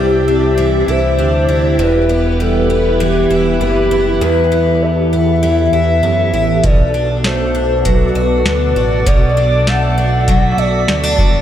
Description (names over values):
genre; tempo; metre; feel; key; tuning
dream pop; 99 BPM; 4/4; straight; E minor; A4 = 440 Hz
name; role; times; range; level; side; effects
hollow clarinet-like synth lead; melody; 0.0-11.4 s; G4 to F#5; -17 LUFS; left 2 dB; chorus, digital delay
soft string machine; sustained chords; 0.0-11.4 s; B2 to E5; -19 LUFS; right 1 dB; phaser, ensemble chorus
picked twelve-string acoustic guitar; arpeggios; 0.0-11.4 s; E2 to F#4; -18 LUFS; equal; wide subtle chorus, digital delay
fat analog bass; bass; 0.0-11.4 s; E1 to F#2; -17 LUFS; right 1 dB; none
drifting glass-harmonics texture; texture; 0.0-11.4 s; B4 to E5; -28 LUFS; right 2 dB; chorus, built-in reverb, digital delay
booming analog drum machine; drums; 6.6-11.4 s; hi-hat, kick drum, snare drum; -15 LUFS; right 1 dB; none
room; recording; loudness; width
light reverb; none; -11 LUFS; side -10 dB against mid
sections
0.0-11.4 A section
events
none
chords
0.0 Cadd9; 1.8 Em; 6.6 Bm7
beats
0.58 1.18 | 1.79 2.39 3.00 3.61 | 4.21 4.82 5.42 6.03 | 6.64 7.24 7.85 8.46 | 9.06 9.67 10.27 10.88